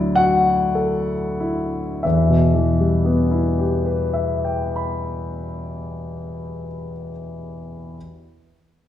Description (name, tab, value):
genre	classical, impressionist solo piano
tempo	29-37 BPM (dotted quarters)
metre	6/8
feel	rubato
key	E minor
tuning	A4 = 440 Hz
part	warm concert grand piano	solo	0.0-8.0 s	D2 to B5	-19 LUFS	left 1 dB	none
room	wet recital hall reverb, RT60 1.3 s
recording	heard from further back in the room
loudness	-18 LUFS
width	side -11 dB against mid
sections	0.0-2.0 A section; 2.0-5.6 B section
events	slowing down 0.0-2.0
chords	0.0 Dadd9; 2.0 Em